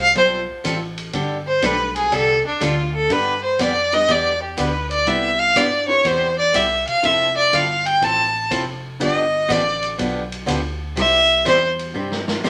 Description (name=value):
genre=country, western swing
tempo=122 BPM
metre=4/4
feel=swing 67% on 8ths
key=C major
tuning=A4 = 441 Hz
part: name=rich fiddle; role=melody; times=0.0-12.5 s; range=D4 to A5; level=-19 LUFS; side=equal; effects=none
part: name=dark upright piano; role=accompaniment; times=0.0-12.4 s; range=D3 to C5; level=-35 LUFS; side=equal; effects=none
part: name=plucky analog bass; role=bass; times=0.0-12.5 s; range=F1 to G2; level=-30 LUFS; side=equal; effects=none
part: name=swinging big-band drum kit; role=drums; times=0.0-12.5 s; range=hi-hat, kick drum, ride cymbal, snare drum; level=-33 LUFS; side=equal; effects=none
part: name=picked swing-style acoustic guitar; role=accompaniment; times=0.1-12.5 s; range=C3 to A4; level=-27 LUFS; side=equal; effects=none
room=moderate studio reverb, RT60 0.7 s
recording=none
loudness=-19 LUFS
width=mono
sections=0.0-12.5 A section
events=fiddle solo 0.0-12.5; drum fill 12.0-12.4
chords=0.0 Fadd9; 1.1 Dsus4; 3.1 G; 5.1 Cmaj7; 7.0 Fmaj7; 9.0 G7; 11.0 C